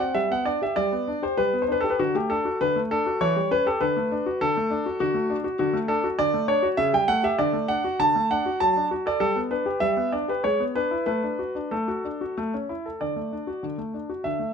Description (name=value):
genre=classical-period piano sonatina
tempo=98 BPM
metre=3/4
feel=rubato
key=D major from 5.6 s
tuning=A4 = 444 Hz
part: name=clear grand piano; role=solo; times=0.0-14.5 s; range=C#3 to A5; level=-22 LUFS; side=equal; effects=none
room=light reverb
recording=close, detailed microphones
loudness=-22 LUFS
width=side -6 dB against mid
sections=0.0-13.0 A section; 13.0-14.5 B section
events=none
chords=0.2 G; 2.0 D; 3.2 C#dim/E; 3.8 D; 6.8 A7/C#; 7.4 D; 8.6 D/F#; 9.2 G; 10.4 E7/G#; 11.1 D/A; 12.4 A; 13.0 D